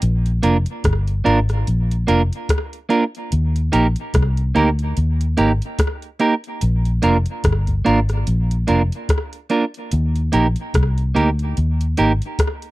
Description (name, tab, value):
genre	roots reggae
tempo	73 BPM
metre	4/4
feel	swing 57% on 16ths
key	Eb major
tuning	A4 = 439 Hz
part	vintage muted fingered electric bass	bass	0.0-12.2 s	F1 to Eb2	-18 LUFS	left 1 dB	none
part	soft vintage rhythm box	drums	0.0-12.7 s	hi-hat, kick drum, rim click	-20 LUFS	equal	slapback echo
part	clean electric guitar	accompaniment	0.4-12.1 s	Bb3 to Bb4	-19 LUFS	right 3 dB	tape echo
room	little or no reverb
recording	dry, close 1970s-style studio recording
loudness	-16 LUFS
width	side -18 dB against mid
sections	0.0-12.7 A section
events	none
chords	0.0 Bb; 3.3 Eb; 6.6 Bb; 9.9 Eb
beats	| 0.01 0.84 1.66 2.49 | 3.31 4.14 4.96 5.79 | 6.61 7.44 8.26 9.09 | 9.91 10.74 11.56 12.39